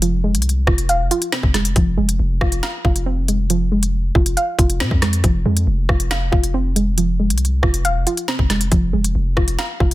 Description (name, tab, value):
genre	hip hop, drill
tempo	138 BPM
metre	4/4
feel	half-time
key	F minor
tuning	A4 = 439 Hz
part	soft round pluck	accompaniment	0.0-9.9 s	F3 to F5	-22 LUFS	right 1 dB	chorus
part	long sustained 808-style bass	bass	0.0-9.9 s	Eb1 to C3	-19 LUFS	equal	none
part	drill drum kit	drums	0.0-9.9 s	hi-hat, kick drum, rim click, snare drum	-18 LUFS	equal	none
room	little or no reverb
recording	dense, heavily limited modern master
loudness	-16 LUFS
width	side -16 dB against mid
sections	0.0-9.9 A section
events	none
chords	0.0 Fm